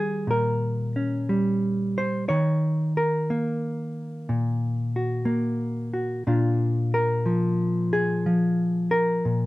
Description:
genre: solo jazz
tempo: 60 BPM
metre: 4/4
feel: swing 67% on 8ths, rubato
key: unclear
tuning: A4 = 441 Hz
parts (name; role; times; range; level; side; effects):
- hollow-body jazz guitar; solo; 0.0-9.5 s; Bb2 to Db5; -22 LUFS; equal; none
room: light reverb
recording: close, detailed microphones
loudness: -22 LUFS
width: side -18 dB against mid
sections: 0.0-9.5 A section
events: none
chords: 0.0 Eb7; 2.3 Ebm; 6.3 Bb7

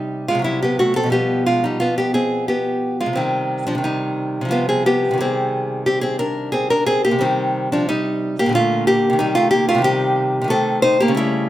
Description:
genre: classical, baroque-style dance for nylon-string guitar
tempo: 89 BPM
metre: 3/4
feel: rubato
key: C minor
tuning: A4 = 439 Hz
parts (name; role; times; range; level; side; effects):
- nylon-string guitar; solo; 0.0-11.5 s; Bb2 to C5; -16 LUFS; equal; none
room: moderate recital hall reverb, RT60 1.7 s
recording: none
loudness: -16 LUFS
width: side -14 dB against mid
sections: 0.0-11.5 A section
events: none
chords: 0.5 Am13/C; 1.1 G7/B; 3.2 Cm; 4.5 G7/C; 5.2 Cm; 8.5 Gm/Bb; 9.2 Cm; 10.5 Adim/C

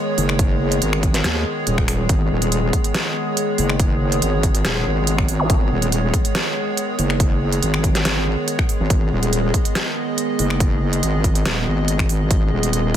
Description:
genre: heavy wobble dubstep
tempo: 141 BPM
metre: 4/4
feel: half-time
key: G# minor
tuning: A4 = 441 Hz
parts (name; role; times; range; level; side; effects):
- evolving wavetable pad; sustained chords; 0.0-13.0 s; D#3 to D#5; -23 LUFS; equal; chorus, built-in reverb, sidechain pumping
- wobble bass; bass; 0.2-12.9 s; D#1 to D#2; -20 LUFS; equal; chorus, overdrive
- dubstep drum kit; drums; 0.2-13.0 s; finger snaps, hi-hat, snare drum; -23 LUFS; right 1 dB; small room ambience, soft clipping on snare
- electronic kick drum; drums; 0.4-13.0 s; none; -19 LUFS; equal; small room ambience
- zap; sound effects; 5.4-5.5 s; none; -25 LUFS; equal; none
room: light reverb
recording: dense, heavily limited modern master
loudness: -17 LUFS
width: side -10 dB against mid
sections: 0.0-13.0 A section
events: none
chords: 0.0 G#m

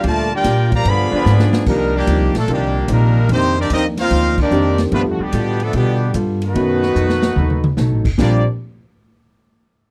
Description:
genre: jazz, big band swing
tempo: 147 BPM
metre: 4/4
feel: swing 67% on 8ths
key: Bb major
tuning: A4 = 440 Hz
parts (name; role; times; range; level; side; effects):
- brilliant trumpet section; melody; 0.0-8.4 s; G3 to B5; -24 LUFS; equal; none
- bright trombone section; second line; 0.0-8.4 s; Bb2 to G4; -23 LUFS; equal; none
- hollow-body jazz guitar; accompaniment; 0.0-8.4 s; F2 to A4; -26 LUFS; equal; none
- mellow saxophone section; sustained chords; 0.0-1.6 s; F3 to G4; -28 LUFS; equal; none
- upright bass; bass; 0.0-8.4 s; F#1 to B2; -20 LUFS; equal; none
- swinging big-band drum kit; drums; 0.0-8.3 s; crash cymbal, hi-hat, kick drum, ride cymbal, snare drum, toms; -24 LUFS; equal; none
- warm grand piano; accompaniment; 1.7-8.4 s; Eb3 to G4; -23 LUFS; equal; none
room: little or no reverb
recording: dry, close 1970s-style studio recording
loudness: -16 LUFS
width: mono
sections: 0.0-1.7 A section; 1.7-8.2 B section; 8.2-9.8 C section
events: drum fill 1.3-1.7, 7.0-7.8; band accent 4.3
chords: 0.0 Bb6; 0.9 G7b9; 1.7 Cm11; 3.3 F13sus4; 4.9 G9; 6.5 B7; 8.2 Bb6

